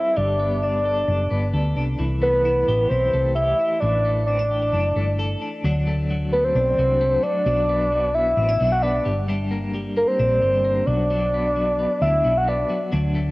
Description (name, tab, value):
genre	jangly indie pop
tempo	132 BPM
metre	4/4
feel	straight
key	D mixolydian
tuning	A4 = 440 Hz
part	soft octave-layered synth lead	melody	0.0-12.8 s	Bb4 to F#5	-20 LUFS	equal	chorus
part	twelve-string electric guitar	arpeggios	0.0-13.3 s	E3 to A4	-28 LUFS	left 1 dB	tremolo
part	hollow-body short-scale fingered electric bass	bass	0.2-13.3 s	F#1 to D2	-23 LUFS	equal	none
room	light reverb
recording	home recording on cassette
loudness	-18 LUFS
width	side -21 dB against mid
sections	0.0-5.6 A section; 5.6-13.3 B section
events	none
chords	0.2 Gadd9; 2.0 C6; 3.8 Asus4; 5.6 D; 7.5 Bm; 9.1 Gm; 10.9 Bm